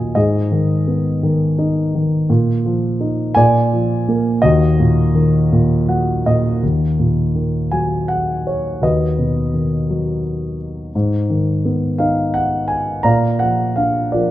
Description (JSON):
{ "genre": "classical, lyrical solo piano", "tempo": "56 BPM (dotted quarters)", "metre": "6/8", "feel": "rubato", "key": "Eb minor", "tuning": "A4 = 440 Hz", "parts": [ { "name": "dark concert grand piano", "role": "solo", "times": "0.0-14.3 s", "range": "Eb2 to Bb5", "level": "-14 LUFS", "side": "equal", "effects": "none" } ], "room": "moderate recital hall reverb, RT60 1.6 s", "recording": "dark, warm production", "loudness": "-14 LUFS", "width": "side -14 dB against mid", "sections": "0.0-6.6 A section; 6.6-14.3 B section", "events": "grand piano fill 5.5-6.6", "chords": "0.2 Abm; 2.3 Bbsus4; 3.4 Bb; 4.4 Ebm; 8.8 B/D#; 10.9 Abm; 13.0 Bb" }